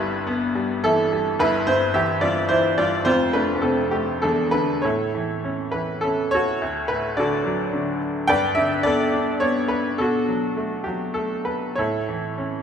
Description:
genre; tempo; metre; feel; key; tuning
classical, lyrical solo piano; 97-110 BPM; 3/4; rubato; unclear; A4 = 436 Hz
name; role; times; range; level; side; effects
bright upright piano; solo; 0.0-12.6 s; E1 to G5; -20 LUFS; equal; none
room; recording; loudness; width
wet recital hall reverb, RT60 1.5 s; recorded in a church or concert hall; -20 LUFS; side -7 dB against mid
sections
0.0-4.8 A section; 4.8-12.6 B section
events
none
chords
0.0 Em/G; 1.4 G6; 3.1 F; 4.2 E5; 4.8 A; 6.6 D; 8.3 Gadd9; 10.0 Bm7; 11.8 A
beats
0.28 0.84 | 1.40 1.95 2.50 | 3.06 3.63 4.23 | 4.85 5.45 6.04 | 6.62 7.18 7.74 | 8.29 8.85 9.42 | 9.99 10.58 11.18 | 11.78 12.37

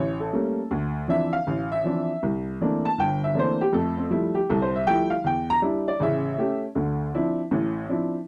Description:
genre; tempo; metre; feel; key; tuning
solo jazz; 159 BPM; 4/4; swing 63% on 8ths; F major; A4 = 439 Hz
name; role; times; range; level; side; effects
warm upright piano; solo; 0.0-8.2 s; G1 to Bb5; -25 LUFS; equal; none
room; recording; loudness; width
light reverb; dry, close 1970s-style studio recording; -25 LUFS; mono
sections
0.0-6.8 A section; 6.8-8.3 A section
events
upright piano solo 0.0-8.3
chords
0.0 A7b9; 0.7 Dm9; 2.2 C13; 3.7 Fmaj9; 5.2 Em7; 6.0 A7; 6.8 Dm9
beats
0.33 | 0.71 1.09 1.47 1.84 | 2.22 2.60 2.98 3.36 | 3.73 4.11 4.49 4.87 | 5.25 5.63 6.00 6.38 | 6.76 7.14 7.52 7.90

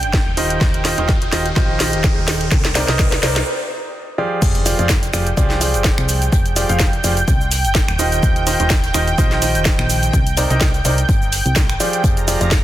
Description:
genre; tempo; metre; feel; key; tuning
piano house; 126 BPM; 4/4; swing 55% on 16ths; F dorian; A4 = 440 Hz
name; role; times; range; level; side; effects
analog string pad; sustained chords; 0.0-12.6 s; G5 to Bb5; -25 LUFS; right 2 dB; ensemble chorus, sidechain pumping
solid FM bass; bass; 0.0-12.6 s; Eb1 to C2; -21 LUFS; equal; sidechain pumping
house drum kit; drums; 0.0-12.6 s; crash cymbal, finger snaps, hi-hat, shaker, snare drum; -21 LUFS; equal; none
riser and impact; sound effects; 0.0-6.3 s; none; -27 LUFS; left 1 dB; none
electronic kick drum; drums; 0.1-12.6 s; none; -17 LUFS; equal; none
clear grand piano; riff; 0.4-12.5 s; C3 to F5; -21 LUFS; right 1 dB; sidechain pumping, low-pass filter, dub echo
soft brush drum kit; drums; 4.4-12.6 s; hi-hat, snare drum; -31 LUFS; left 4 dB; none
room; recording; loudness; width
light reverb, studio reverb; dense, heavily limited modern master; -14 LUFS; side -13 dB against mid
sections
0.0-4.4 A section; 4.4-12.6 B section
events
build-up 0.0-4.4; drum fill 0.0-3.5; riser 0.0-3.5; break 3.5-4.4; drop 4.4-12.6; impact 4.4-6.3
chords
0.4 Eb69; 2.5 Cm9; 4.4 Fm69; 8.0 Eb69; 10.1 Cm9; 12.0 Fm69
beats
0.14 | 0.61 1.09 1.56 2.04 | 2.52 2.99 3.47 3.94 | 4.42 4.90 5.37 5.85 | 6.33 6.80 7.28 7.75 | 8.23 8.71 9.18 9.66 | 10.13 10.61 11.09 11.56 | 12.04 12.52

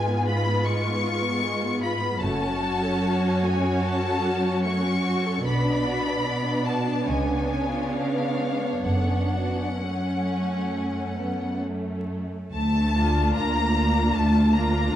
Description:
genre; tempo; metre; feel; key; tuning
classical, slow romantic movement for string orchestra; 63-80 BPM; 4/4; rubato; F# minor; A4 = 440 Hz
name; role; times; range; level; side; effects
rich symphonic violin section; melody; 0.0-15.0 s; E#5 to C#6; -30 LUFS; left 3 dB; none
rich symphonic violin section; second line; 0.0-15.0 s; Ab3 to Bb5; -30 LUFS; left 2 dB; none
rich symphonic viola section; accompaniment; 0.0-15.0 s; Ab3 to F#4; -29 LUFS; right 1 dB; none
rich studio cello section; bass; 0.0-15.0 s; F#2 to Bb3; -26 LUFS; right 1 dB; none
rich symphonic double bass section; bass; 2.2-15.0 s; F#1 to D2; -26 LUFS; right 1 dB; none
room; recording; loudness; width
wet recital hall reverb, RT60 1.3 s; vinyl crackle; -22 LUFS; side -11 dB against mid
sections
0.0-12.5 A section; 12.5-15.0 B section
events
none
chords
0.0 Fdim/Ab; 2.2 F#m; 5.5 Bm; 7.1 C#7b9; 8.8 F#m; 12.5 Dm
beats
0.65 1.43 | 2.21 3.02 3.84 4.63 | 5.45 6.26 7.07 7.92 | 8.85 9.78 10.71 11.63 | 12.52 13.35 14.14 14.93

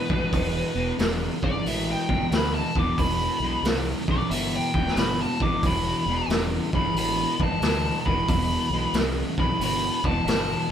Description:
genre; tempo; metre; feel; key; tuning
blues rock power trio and southern rock; 90 BPM; 4/4; swing 66% on 8ths; E minor; A4 = 440 Hz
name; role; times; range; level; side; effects
biting lead guitar; melody; 0.0-10.7 s; B4 to D6; -28 LUFS; equal; wah, overdrive
distorted electric guitar; riff; 0.0-10.7 s; E2 to C#3; -28 LUFS; equal; distortion
growling fingered electric bass; bass; 0.1-10.5 s; E1 to D2; -30 LUFS; equal; overdrive
raw garage drum kit; drums; 0.1-10.5 s; hi-hat, kick drum, snare drum; -26 LUFS; equal; none
room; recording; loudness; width
light reverb; band playing live in one room; -22 LUFS; side -9 dB against mid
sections
0.0-10.7 A section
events
lead electric guitar solo 0.0-10.7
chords
0.0 Em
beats
| 0.32 0.99 1.65 2.31 | 2.98 3.64 4.30 4.97 | 5.63 6.29 6.96 7.62 | 8.28 8.94 9.60 10.26

